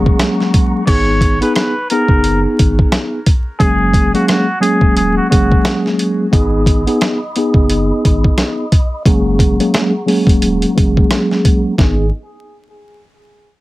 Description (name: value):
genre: hip hop, boom-bap hip-hop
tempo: 88 BPM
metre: 4/4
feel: swing 60% on 16ths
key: G# minor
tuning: A4 = 440 Hz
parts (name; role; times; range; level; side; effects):
- mellow tine electric piano; accompaniment; 0.0-12.1 s; F#3 to G#4; -15 LUFS; equal; medium stereo tremolo, cassette tape, high-pass filter, low-pass filter
- mellow tonewheel organ; sustained chords; 0.0-0.8, 6.3-12.1 s; B3 to D#6; -27 LUFS; equal; fast rotary speaker, high-pass filter, low-pass filter
- warm sub bass; bass; 0.0-12.1 s; D#1 to G#1; -18 LUFS; equal; none
- dusty soul sampler-style drum kit; drums; 0.1-12.0 s; crash cymbal, hi-hat, kick drum, rim click, snare drum; -13 LUFS; equal; none
- trumpet with straight mute; melody; 0.9-5.8, 11.8-12.1 s; F#4 to C#5; -20 LUFS; equal; high-pass filter, low-pass filter, tape echo
room: light reverb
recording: heavily compressed radio sound, vinyl crackle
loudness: -11 LUFS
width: side -18 dB against mid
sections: 0.9-11.8 A section; 11.8-13.6 B section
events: filter sweep 0.9-11.8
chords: 0.0 F#add9; 0.9 G#m; 3.6 F#add9; 6.3 G#m; 9.1 F#add9; 11.8 G#m